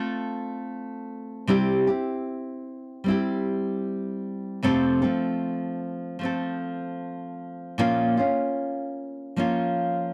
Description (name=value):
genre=pop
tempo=76 BPM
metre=4/4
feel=straight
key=unclear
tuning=A4 = 440 Hz
part: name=nylon-string guitar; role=solo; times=0.0-10.1 s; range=F2 to A4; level=-27 LUFS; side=equal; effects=none
room=moderate booth ambience, RT60 0.2 s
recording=dry, close 1970s-style studio recording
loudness=-27 LUFS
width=mono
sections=0.0-7.8 A section; 7.8-10.1 B section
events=none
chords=0.0 F/A; 1.5 C; 4.6 F; 7.8 Bbm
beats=0.69 | 1.48 2.27 3.06 3.85 | 4.64 5.43 6.22 7.01 | 7.79 8.59 9.37